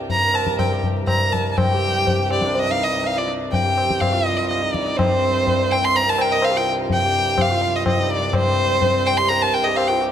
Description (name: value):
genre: indian classical, Hindustani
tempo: 124 BPM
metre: 7/4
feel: straight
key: C raga kafi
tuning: A4 = 440 Hz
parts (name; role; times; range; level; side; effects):
- hand-pumped harmonium; drone; 0.0-10.1 s; C2 to G2; -28 LUFS; left 1 dB; none
- warm violin; melody; 0.1-10.0 s; C5 to C6; -20 LUFS; equal; none
- tabla; percussion; 0.1-10.0 s; none; -22 LUFS; left 2 dB; none
- dark sarangi; second line; 0.2-10.1 s; C4 to C5; -27 LUFS; right 6 dB; none
room: moderate concert hall reverb, RT60 2.5 s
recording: none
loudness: -17 LUFS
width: side -9 dB against mid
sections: 0.0-1.6 A section; 1.6-10.1 B section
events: speeding up 0.0-10.1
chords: none